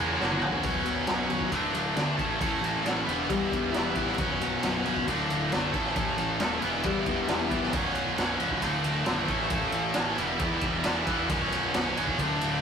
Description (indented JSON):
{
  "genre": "quiet-loud alternative rock",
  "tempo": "135 BPM",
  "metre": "4/4",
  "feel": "straight",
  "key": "B minor",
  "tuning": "A4 = 440 Hz",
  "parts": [
    { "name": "high-gain distorted guitar", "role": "riff", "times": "0.0-12.6 s", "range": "B1 to A4", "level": "-27 LUFS", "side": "right 1 dB", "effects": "distortion" },
    { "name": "fuzz picked electric bass", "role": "bass", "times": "0.0-12.6 s", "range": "B0 to E2", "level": "-35 LUFS", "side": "equal", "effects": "overdrive" },
    { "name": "raw garage drum kit", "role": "drums", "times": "0.2-12.5 s", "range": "kick drum, ride cymbal, snare drum, toms", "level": "-31 LUFS", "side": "equal", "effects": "none" },
    { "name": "fingerpicked steel-string acoustic guitar", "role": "arpeggios", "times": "0.6-7.7 s", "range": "D2 to E4", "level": "-33 LUFS", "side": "left 6 dB", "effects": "none" }
  ],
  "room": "moderate studio reverb, RT60 0.6 s",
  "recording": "rough rehearsal-room recording, warm saturation",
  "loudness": "-25 LUFS",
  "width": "side -7 dB against mid",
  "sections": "0.6-12.6 A section",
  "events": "drum fill 0.2-0.6",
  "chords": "0.0 F#; 0.6 Bsus2; 1.5 Dsus2; 2.2 A; 3.1 Em; 4.2 Bsus2; 5.1 Dsus2; 5.7 A; 6.6 Em; 7.7 Bsus2; 8.6 Dsus2; 9.3 A; 10.2 Em; 11.3 Bsus2"
}